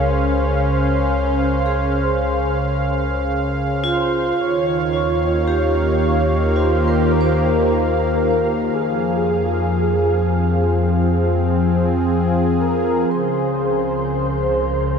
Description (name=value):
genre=ambient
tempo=55 BPM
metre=4/4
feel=straight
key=Db lydian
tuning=A4 = 439 Hz
part: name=breathy flute-like synth lead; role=melody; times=0.0-15.0 s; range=Ab4 to Db5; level=-23 LUFS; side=equal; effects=ensemble chorus, ping-pong delay
part: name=warm analog pad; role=sustained chords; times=0.0-15.0 s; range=Db3 to F5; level=-19 LUFS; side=equal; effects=chorus
part: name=vibraphone with hard mallets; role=arpeggios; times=0.0-15.0 s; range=F4 to C5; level=-25 LUFS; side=right 2 dB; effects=ping-pong delay
part: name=warm sub bass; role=bass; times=0.0-15.0 s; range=Db2 to F2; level=-22 LUFS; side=equal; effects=none
part: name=wind-like tuned noise texture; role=texture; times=13.9-15.0 s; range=Bb5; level=-48 LUFS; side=right 5 dB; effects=none
room=wet huge ambient reverb, RT60 8.8 s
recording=in a vast, echoing space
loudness=-16 LUFS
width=side -6 dB against mid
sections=0.0-13.1 A section; 13.1-15.0 B section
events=none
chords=0.0 Dbmaj7; 4.4 Ebadd9; 8.8 Fm; 13.1 Dbmaj7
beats=| 0.02 1.11 2.21 3.30 | 4.39 5.48 6.57 7.66 | 8.75 9.84 10.93 12.02 | 13.11 14.21